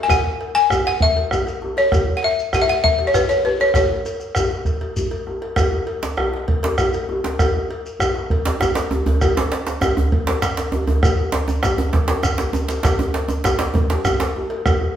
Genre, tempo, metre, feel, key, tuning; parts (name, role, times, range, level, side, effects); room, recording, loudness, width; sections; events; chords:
west african traditional, West African drum ensemble; 132 BPM (dotted quarters); 12/8; straight; E major pentatonic; A4 = 439 Hz
balafon; melody; 0.0-4.6 s; B4 to G#5; -17 LUFS; left 2 dB
bombo; percussion; 0.1-14.8 s; -21 LUFS; right 1 dB
cowbell; percussion; 0.1-14.8 s; -28 LUFS; left 2 dB
djembe; percussion; 0.1-14.9 s; -25 LUFS; left 1 dB
shekere; percussion; 0.1-14.8 s; -28 LUFS; left 1 dB
djembe; percussion; 6.0-14.3 s; -21 LUFS; right 2 dB
wet stone room reverb, RT60 1.3 s; band playing live in one room; -17 LUFS; side -9 dB against mid
0.0-5.6 A section; 5.6-15.0 B section
drum fill 12.2-12.8